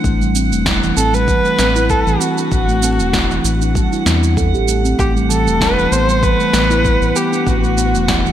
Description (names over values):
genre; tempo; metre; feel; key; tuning
organic downtempo; 97 BPM; 4/4; swing 54% on 16ths; A dorian; A4 = 440 Hz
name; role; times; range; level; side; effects
steel tongue drum; arpeggios; 0.0-8.3 s; E3 to A4; -18 LUFS; right 1 dB; low-pass filter, digital delay
round analog bass; bass; 0.0-8.3 s; E1 to E2; -18 LUFS; equal; none
electronic kick drum; drums; 0.0-8.2 s; none; -20 LUFS; equal; none
electronic shaker and snare drum; drums; 0.0-8.3 s; none; -21 LUFS; right 1 dB; gated reverb
drifting glass-harmonics texture; texture; 0.0-8.3 s; F#5; -26 LUFS; right 5 dB; chorus, built-in reverb
dark kamancheh; melody; 1.0-8.3 s; F#4 to C5; -18 LUFS; equal; ping-pong delay
room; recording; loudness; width
moderate plate reverb, RT60 3.1 s; bright 1980s-style digital production; -12 LUFS; side -10 dB against mid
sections
0.0-8.3 A section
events
none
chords
0.0 Am; 5.0 Esus2